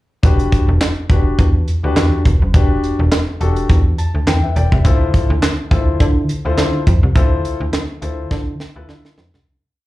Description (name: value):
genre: early-eighties boogie funk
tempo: 104 BPM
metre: 4/4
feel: swing 56% on 16ths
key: E phrygian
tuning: A4 = 440 Hz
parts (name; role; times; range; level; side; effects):
- warm concert grand piano; accompaniment; 0.2-9.1 s; D4 to A5; -22 LUFS; left 4 dB; plate reverb, slapback echo
- slap-like FM bass; bass; 0.2-9.4 s; E1 to D3; -15 LUFS; equal; none
- tight funk drum kit; drums; 0.2-9.5 s; handclaps, hi-hat, kick drum, snare drum; -15 LUFS; equal; none
room: little or no reverb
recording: live gig heard through the venue's PA, club reverb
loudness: -13 LUFS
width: side -17 dB against mid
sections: 0.2-9.5 verse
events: grand piano fill 3.7-4.8; fade-out 7.2-9.5; drum fill 8.3-9.5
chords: 0.2 Em9; 4.8 Dm9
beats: | 0.23 0.81 1.39 1.97 | 2.54 3.12 3.70 4.27 | 4.85 5.43 6.00 6.58 | 7.16 7.73 8.31 8.89